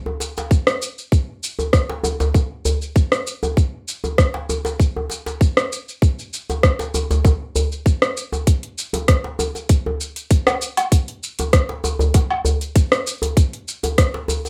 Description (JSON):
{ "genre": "downtempo", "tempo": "98 BPM", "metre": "4/4", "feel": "straight", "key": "none", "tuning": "none", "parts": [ { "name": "djembe", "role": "percussion", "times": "0.1-14.5 s", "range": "none", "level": "-25 LUFS", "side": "equal", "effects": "none" }, { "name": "afro-pop drum kit", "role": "drums", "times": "0.2-14.5 s", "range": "hi-hat, rim click, shaker, woodblock", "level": "-23 LUFS", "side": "equal", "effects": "overdrive" }, { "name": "electronic kick drum", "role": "drums", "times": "0.5-14.1 s", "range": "none", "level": "-17 LUFS", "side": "equal", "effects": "overdrive" } ], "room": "moderate studio reverb, RT60 0.6 s", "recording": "rough home demo mix", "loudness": "-20 LUFS", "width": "mono", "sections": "0.0-8.5 A section; 8.5-14.5 A section", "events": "none", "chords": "none", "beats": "0.51 | 1.12 1.74 2.35 2.96 | 3.57 4.18 4.80 5.41 | 6.02 6.63 7.25 7.86 | 8.47 9.08 9.69 10.31 | 10.92 11.53 12.14 12.76 | 13.37 13.98" }